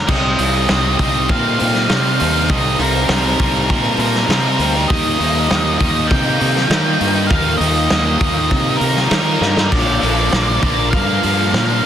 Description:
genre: quiet-loud alternative rock.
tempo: 100 BPM.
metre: 4/4.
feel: straight.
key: C dorian.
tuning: A4 = 440 Hz.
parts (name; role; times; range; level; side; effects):
octave-fuzz lead guitar; melody; 0.0-11.9 s; Bb4 to G5; -20 LUFS; right 2 dB; distortion, analog delay.
warm studio string section; sustained chords; 0.1-11.9 s; Eb4 to Bb5; -30 LUFS; left 2 dB; none.
distorted electric guitar; riff; 0.1-11.9 s; Bb2 to Eb4; -21 LUFS; equal; overdrive.
overdriven electric guitar; riff; 0.1-11.9 s; Bb2 to Eb4; -21 LUFS; left 1 dB; none.
fuzz fingered electric bass; bass; 0.1-11.8 s; Bb1 to Eb3; -20 LUFS; equal; overdrive.
loose indie drum kit; drums; 0.1-11.7 s; crash cymbal, hi-hat, kick drum, snare drum; -19 LUFS; equal; none.
room: little or no reverb.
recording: dense, heavily limited modern master.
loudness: -13 LUFS.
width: side -10 dB against mid.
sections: 0.1-11.9 A section.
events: drum fill 9.4-9.7.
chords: 0.1 Cm7; 4.9 Ebadd9; 9.7 Bb.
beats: | 0.08 0.69 1.29 1.89 | 2.50 3.10 3.70 4.30 | 4.90 5.50 6.11 6.71 | 7.31 7.91 8.52 9.12 | 9.72 10.33 10.93 11.53.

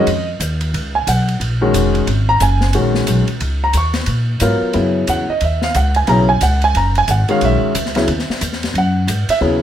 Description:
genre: modal jazz.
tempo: 180 BPM.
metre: 4/4.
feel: swing 62% on 8ths.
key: G# minor.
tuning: A4 = 440 Hz.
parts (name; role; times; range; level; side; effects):
warm concert grand piano; accompaniment; 0.0-9.6 s; C#3 to C#6; -16 LUFS; equal; none.
upright bass; bass; 0.0-9.6 s; E#1 to A#2; -17 LUFS; equal; none.
open jazz drum kit; drums; 0.1-9.3 s; hi-hat, ride cymbal, snare drum; -24 LUFS; left 1 dB; none.
room: light reverb.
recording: none.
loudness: -13 LUFS.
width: side -10 dB against mid.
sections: 0.0-9.6 A section.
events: none.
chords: 0.0 G#13sus4; 4.7 F#13sus4.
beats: 0.07 0.41 | 0.74 1.07 1.41 1.74 | 2.08 2.41 2.74 3.08 | 3.41 3.74 4.08 4.41 | 4.75 5.08 5.41 5.75 | 6.08 6.41 6.75 7.08 | 7.41 7.75 8.08 8.41 | 8.74 9.08 9.41.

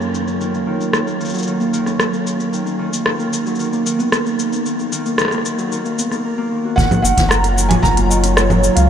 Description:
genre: folktronica.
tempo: 113 BPM.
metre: 4/4.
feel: straight.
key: unclear.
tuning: A4 = 439 Hz.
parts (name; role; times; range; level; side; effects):
warbly tape-like pad; sustained chords; 0.0-8.9 s; F#2 to C#5; -24 LUFS; right 3 dB; chorus, built-in reverb.
Celtic harp; arpeggios; 0.0-8.9 s; D#3 to A#4; -20 LUFS; equal; low-pass filter, analog delay.
organic electronic drum kit; drums; 0.0-8.9 s; cabasa, congas, hi-hat, rim click; -20 LUFS; left 1 dB; low-pass filter on perc, low-pass filter on snare, low-pass filter on hats, low-pass filter on room.
felt-muted upright piano; melody; 6.8-8.9 s; C#5 to A#5; -18 LUFS; right 2 dB; ensemble chorus, analog delay.
warm sub bass; bass; 6.8-8.9 s; F#1 to C#2; -16 LUFS; equal; none.
kick drum; drums; 6.8-7.9 s; none; -18 LUFS; equal; none.
room: wet huge ambient reverb, RT60 7.6 s.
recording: dreamy mix soaked in reverb.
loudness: -15 LUFS.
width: side -8 dB against mid.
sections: 0.0-6.8 A section; 6.8-8.9 B section.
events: none.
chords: 0.0 D#m7/F#; 2.5 Bmaj7; 6.8 D#m7/F#.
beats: | 0.41 0.94 1.47 2.00 | 2.53 3.06 3.59 4.12 | 4.65 5.18 5.71 6.25 | 6.78 7.31 7.84 8.37.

